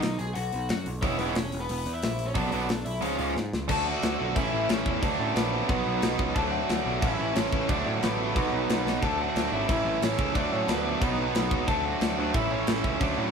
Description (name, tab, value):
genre	punk rock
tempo	180 BPM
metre	4/4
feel	straight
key	unclear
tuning	A4 = 440 Hz
part	raw garage guitar	melody	0.0-13.3 s	B3 to A5	-32 LUFS	left 2 dB	overdrive
part	overdriven picked electric bass	bass	0.0-13.3 s	E1 to A2	-33 LUFS	equal	none
part	tight metal drum kit	drums	0.0-13.1 s	crash cymbal, hi-hat, kick drum, snare drum	-30 LUFS	left 1 dB	none
part	distorted electric guitar	riff	1.0-13.3 s	A2 to F#4	-32 LUFS	left 7 dB	overdrive
part	tight distorted guitar	riff	1.0-13.3 s	A2 to F#4	-30 LUFS	right 8 dB	distortion
room	moderate small room ambience, RT60 0.5 s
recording	band playing live in one room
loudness	-24 LUFS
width	side -6 dB against mid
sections	0.0-3.7 A section; 3.7-13.3 B section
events	drum fill 3.4-3.7, 8.9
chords	0.0 B; 1.0 E; 2.4 Bm; 3.0 C#; 3.7 D; 4.4 A; 5.0 D; 5.7 B; 6.4 D; 7.0 A; 7.7 D; 8.4 B; 9.0 D; 9.7 A; 10.4 D; 11.0 B; 11.7 D; 12.3 A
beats	0.02 0.36 0.69 | 1.02 1.36 1.69 2.02 | 2.36 2.69 3.02 3.36 | 3.69 4.02 4.36 4.69 | 5.02 5.36 5.69 6.02 | 6.36 6.69 7.02 7.36 | 7.69 8.02 8.36 8.69 | 9.02 9.35 9.69 10.02 | 10.35 10.69 11.02 11.35 | 11.68 12.02 12.35 12.68 | 13.01